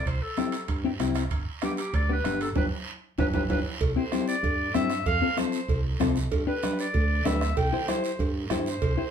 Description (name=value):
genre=latin, cumbia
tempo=192 BPM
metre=4/4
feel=straight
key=C major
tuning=A4 = 438 Hz
part: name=bright clarinet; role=melody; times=0.0-9.1 s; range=G4 to G5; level=-30 LUFS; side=equal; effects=none
part: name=fingered electric bass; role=bass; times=0.1-8.9 s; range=G1 to G2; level=-30 LUFS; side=right 1 dB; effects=none
part: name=bombo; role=percussion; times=0.1-9.0 s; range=none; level=-31 LUFS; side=right 2 dB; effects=none
part: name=congas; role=percussion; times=0.1-9.0 s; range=none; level=-36 LUFS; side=right 1 dB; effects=none
part: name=guiro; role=percussion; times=0.1-9.1 s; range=none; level=-41 LUFS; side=right 5 dB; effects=none
part: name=timbales and cowbell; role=percussion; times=0.1-9.0 s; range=none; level=-35 LUFS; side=right 5 dB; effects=none
part: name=clean electric guitar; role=accompaniment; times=0.4-9.0 s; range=B3 to C5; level=-29 LUFS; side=left 5 dB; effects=none
room=wet studio reverb, RT60 0.6 s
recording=band playing live in one room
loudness=-24 LUFS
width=side -8 dB against mid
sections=0.0-3.8 A section; 3.8-9.1 B section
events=band accent 2.6-3.8; drum fill 2.9-3.8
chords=0.0 C; 1.3 G7; 3.8 C; 5.1 F; 6.3 G; 7.6 C